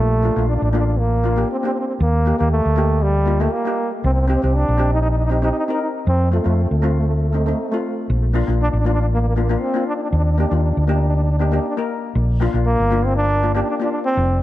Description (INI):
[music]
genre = calypso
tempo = 118 BPM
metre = 4/4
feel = straight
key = Bb major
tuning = A4 = 441 Hz
[part]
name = clear trombone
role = melody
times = 0.0-14.4 s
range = G3 to Eb4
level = -22 LUFS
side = right 1 dB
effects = tape echo
[part]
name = hollow-body short-scale fingered electric bass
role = bass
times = 0.0-14.4 s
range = F1 to F2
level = -18 LUFS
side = equal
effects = none
[part]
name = steel pan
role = accompaniment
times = 0.2-14.2 s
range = A3 to Bb4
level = -24 LUFS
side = left 3 dB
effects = none
[sound]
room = light reverb, studio reverb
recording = dark, warm production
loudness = -16 LUFS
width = side -14 dB against mid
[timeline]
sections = 0.0-14.4 A section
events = none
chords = 0.0 Bbmaj7; 2.0 Ebmaj7; 4.0 Cm7; 6.1 F; 8.1 Bbmaj7; 10.1 Ebmaj7; 12.2 Bb6